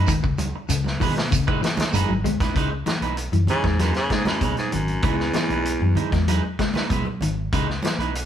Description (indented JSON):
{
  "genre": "afrobeat",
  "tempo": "97 BPM",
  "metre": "4/4",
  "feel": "straight",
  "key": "C# minor",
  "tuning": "A4 = 440 Hz",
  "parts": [
    { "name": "semi-hollow electric guitar", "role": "arpeggios", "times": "0.0-8.1 s", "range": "B2 to G#3", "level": "-27 LUFS", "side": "left 5 dB", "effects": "none" },
    { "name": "electric guitar at the edge of break-up", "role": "stabs", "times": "0.0-8.2 s", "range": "G#3 to B4", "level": "-29 LUFS", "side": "right 6 dB", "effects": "none" },
    { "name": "hollow-body short-scale fingered electric bass", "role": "bass", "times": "0.0-8.2 s", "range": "F#1 to C#3", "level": "-25 LUFS", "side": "equal", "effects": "none" },
    { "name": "vintage drum kit", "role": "drums", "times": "0.1-8.3 s", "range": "hi-hat, kick drum, snare drum", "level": "-25 LUFS", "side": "right 1 dB", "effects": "none" },
    { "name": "congas", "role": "percussion", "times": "0.1-8.3 s", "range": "none", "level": "-31 LUFS", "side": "right 3 dB", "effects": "none" },
    { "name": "shekere", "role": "percussion", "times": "0.1-2.4 s", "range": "none", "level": "-29 LUFS", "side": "right 2 dB", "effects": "none" },
    { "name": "raspy baritone saxophone", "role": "melody", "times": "3.5-6.2 s", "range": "E2 to C#3", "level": "-24 LUFS", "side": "right 1 dB", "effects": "none" }
  ],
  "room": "moderate studio reverb, RT60 0.9 s",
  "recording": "band playing live in one room",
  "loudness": "-20 LUFS",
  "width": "side -10 dB against mid",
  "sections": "0.0-2.6 A section; 2.6-8.3 B section",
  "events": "baritone saxophone solo 2.6-8.3",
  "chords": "0.0 C#m9",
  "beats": "| 0.08 0.70 1.32 1.94 | 2.55 3.17 3.79 4.42 | 5.04 5.66 6.28 6.90 | 7.52 8.14"
}